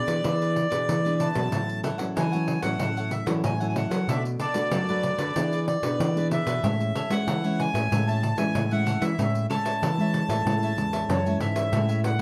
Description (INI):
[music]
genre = samba and choro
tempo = 94 BPM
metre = 4/4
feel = straight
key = A major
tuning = A4 = 441 Hz
[part]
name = accordion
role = melody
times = 0.0-12.2 s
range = C#5 to A5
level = -31 LUFS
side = equal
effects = slapback echo
[part]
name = cavaquinho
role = accompaniment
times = 0.0-12.2 s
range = D4 to G#5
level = -38 LUFS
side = equal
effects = none
[part]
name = nylon-string guitar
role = accompaniment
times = 0.0-12.2 s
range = F#2 to G#4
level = -32 LUFS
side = equal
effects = none
[part]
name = nylon-string guitar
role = bass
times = 0.1-12.2 s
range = E2 to F#3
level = -30 LUFS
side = equal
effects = none
[part]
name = pandeiro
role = percussion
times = 0.1-12.2 s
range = none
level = -34 LUFS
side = equal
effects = none
[sound]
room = light reverb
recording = close, detailed microphones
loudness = -25 LUFS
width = mono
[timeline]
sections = 0.0-11.7 A section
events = none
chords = 0.0 E7; 1.5 A6; 4.1 Bm7; 5.4 E7; 6.6 Amaj7